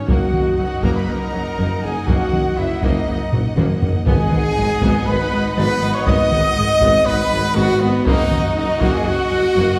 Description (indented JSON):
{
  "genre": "cinematic, epic orchestral film score",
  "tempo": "120 BPM",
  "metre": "4/4",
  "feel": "straight",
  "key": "G# minor",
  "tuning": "A4 = 442 Hz",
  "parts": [
    { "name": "clear symphonic violin section", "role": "melody", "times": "0.0-9.8 s", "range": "B4 to D#6", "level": "-34 LUFS", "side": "equal", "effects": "none" },
    { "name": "hollow concert flute", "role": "second line", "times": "0.0-9.8 s", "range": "B4 to D#6", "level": "-31 LUFS", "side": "equal", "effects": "none" },
    { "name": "rich symphonic violin section", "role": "second line", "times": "0.0-9.8 s", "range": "D#5 to F#5", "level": "-33 LUFS", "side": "equal", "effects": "none" },
    { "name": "rich symphonic viola section", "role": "accompaniment", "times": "0.0-9.8 s", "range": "F#3 to F#4", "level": "-30 LUFS", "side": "equal", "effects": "none" },
    { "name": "warm French horn section", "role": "sustained chords", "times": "0.0-9.8 s", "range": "B3 to D#5", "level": "-24 LUFS", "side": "equal", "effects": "none" },
    { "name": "warm trumpet", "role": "stabs", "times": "0.0-9.8 s", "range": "B3 to D#5", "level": "-26 LUFS", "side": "equal", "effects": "none" },
    { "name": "rich symphonic double bass section", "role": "bass", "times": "0.1-9.6 s", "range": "F#1 to G#1", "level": "-28 LUFS", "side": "equal", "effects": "none" },
    { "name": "warm symphonic cello section", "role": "bass", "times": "0.1-9.6 s", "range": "F#2 to G#2", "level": "-27 LUFS", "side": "equal", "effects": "none" },
    { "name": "warm tuba", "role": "bass", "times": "0.1-9.7 s", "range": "F#1 to G#1", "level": "-28 LUFS", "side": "equal", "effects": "none" },
    { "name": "solo taiko drums", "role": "drums", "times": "0.1-9.3 s", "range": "none", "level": "-23 LUFS", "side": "equal", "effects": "none" },
    { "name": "timpani", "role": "percussion", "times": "4.1-4.8 s", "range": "G#2", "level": "-29 LUFS", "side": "equal", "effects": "none" }
  ],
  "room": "wet scoring stage reverb, RT60 1.6 s",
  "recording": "heard from further back in the room",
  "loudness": "-17 LUFS",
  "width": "mono",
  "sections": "0.0-9.8 A section",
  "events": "drum fill 3.3-4.1",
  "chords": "0.1 D#m/F#; 4.1 G#m7; 8.1 D#m/F#"
}